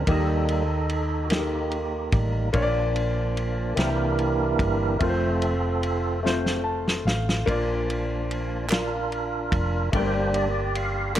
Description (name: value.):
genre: slow gospel.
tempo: 49 BPM (dotted quarters).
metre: 6/8.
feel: straight.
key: Bb major.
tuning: A4 = 438 Hz.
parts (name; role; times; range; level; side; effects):
warm concert grand piano; accompaniment; 0.0-11.2 s; G2 to A5; -28 LUFS; left 3 dB; none.
percussive tonewheel organ; sustained chords; 0.0-11.1 s; E3 to F5; -27 LUFS; right 3 dB; fast rotary speaker, chorus vibrato.
hollow-body short-scale fingered electric bass; bass; 0.0-11.2 s; F1 to Eb2; -28 LUFS; equal; none.
warm soul drum kit; drums; 0.1-11.2 s; kick drum, ride cymbal, snare drum; -29 LUFS; equal; none.
group handclap; percussion; 8.7-11.2 s; none; -29 LUFS; right 5 dB; none.
room: light reverb.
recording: none.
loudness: -22 LUFS.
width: side -11 dB against mid.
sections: 0.0-11.2 A section.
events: tonewheel organ solo 0.0-11.2; drum fill 6.2-7.5; grand piano fill 6.2-7.5.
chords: 0.1 Eb; 2.5 Bb; 3.8 C7; 5.0 F; 7.5 Bb; 9.9 Gm.